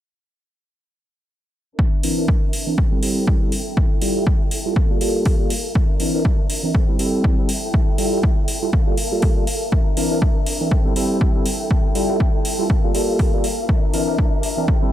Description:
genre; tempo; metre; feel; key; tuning
filtered disco house; 121 BPM; 4/4; swing 57% on 16ths; unclear; A4 = 440 Hz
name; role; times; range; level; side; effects
warm studio violin section; sustained chords; 1.8-14.9 s; Bb3 to G5; -28 LUFS; left 1 dB; sidechain pumping, low-pass filter
electronic kick drum; drums; 1.8-14.8 s; none; -18 LUFS; equal; overdrive
barky tine electric piano; accompaniment; 2.0-14.9 s; E3 to Bb4; -23 LUFS; equal; phaser, sidechain pumping, low-pass filter
electronic hi-hat; drums; 2.0-14.5 s; none; -27 LUFS; right 1 dB; overdrive, sidechain pumping on hats
room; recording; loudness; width
light reverb, digital ambience; none; -16 LUFS; side -12 dB against mid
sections
1.8-14.9 A section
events
filter sweep 1.8-14.9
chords
1.8 C9; 2.8 Am7; 3.5 Fmaj9; 4.8 Gm9; 5.8 C9; 6.7 Am7; 7.5 Fmaj9; 8.7 Gm9; 9.7 C9; 10.7 Am7; 11.5 Fmaj9; 12.7 Gm9; 13.7 C9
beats
| 1.79 2.28 2.78 3.27 | 3.77 4.27 4.76 5.26 | 5.75 6.25 6.75 7.24 | 7.74 8.23 8.73 9.23 | 9.72 10.22 10.71 11.21 | 11.71 12.20 12.70 13.19 | 13.69 14.18 14.68

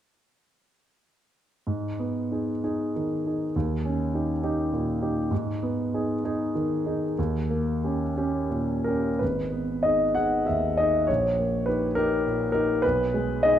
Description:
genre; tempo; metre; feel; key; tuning
classical, romantic character piece for solo piano; 53-70 BPM (dotted quarters); 6/8; rubato; G# minor; A4 = 440 Hz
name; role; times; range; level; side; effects
warm concert grand piano; solo; 1.7-13.6 s; G#1 to F#5; -23 LUFS; equal; none
room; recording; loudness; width
moderate recital hall reverb, RT60 1.5 s; none; -24 LUFS; side -10 dB against mid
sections
1.7-9.2 A section; 9.2-13.6 B section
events
none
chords
1.7 G#m; 3.5 D#7; 5.3 G#m; 7.2 D#7; 9.2 G#m; 11.1 D#7/A#; 12.8 G#m/B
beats
| 1.67 2.63 | 3.55 4.42 | 5.31 6.25 | 7.18 8.16 | 9.21 10.16 | 11.08 11.97 | 12.83

